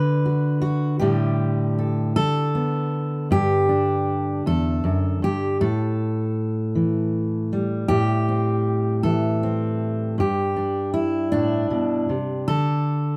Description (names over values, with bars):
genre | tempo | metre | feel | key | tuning
folk, solo fingerstyle acoustic guitar | 52 BPM (dotted quarters) | 6/8 | straight | A dorian | A4 = 441 Hz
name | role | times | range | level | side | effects
fingerpicked steel-string acoustic guitar | solo | 0.0-13.2 s | E2 to B4 | -22 LUFS | equal | none
room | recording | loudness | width
moderate large studio reverb, RT60 1.0 s | band playing live in one room | -22 LUFS | mono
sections
0.0-7.9 A section; 7.9-13.2 A section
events
none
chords
0.0 Bm; 1.0 Dsus4/A; 3.3 G; 5.6 A5; 7.9 Am7; 10.2 G; 12.5 D5